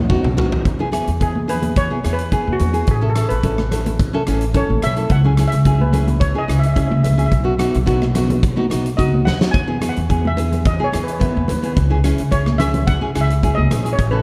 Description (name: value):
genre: calypso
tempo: 108 BPM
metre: 4/4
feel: straight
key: E major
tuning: A4 = 443 Hz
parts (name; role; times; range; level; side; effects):
- steel pan; melody; 0.0-14.2 s; F#3 to G#5; -27 LUFS; equal; tape echo
- upright bass; bass; 0.0-14.2 s; A1 to E2; -21 LUFS; equal; none
- nylon-string guitar; accompaniment; 0.1-14.2 s; B3 to B4; -24 LUFS; equal; none
- huge arena drum kit; drums; 0.1-14.1 s; hi-hat, kick drum, rim click, snare drum, toms; -24 LUFS; equal; none
- congas; percussion; 0.4-13.8 s; none; -27 LUFS; equal; none
room: light reverb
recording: dark, warm production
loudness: -17 LUFS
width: mono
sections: 0.7-14.2 A section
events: drum fill 0.0-0.7, 9.3; steel pan solo 0.7-14.2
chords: 0.0 B; 0.7 E; 2.9 Aadd9; 5.1 C#m; 7.3 B; 9.5 E; 11.8 C#m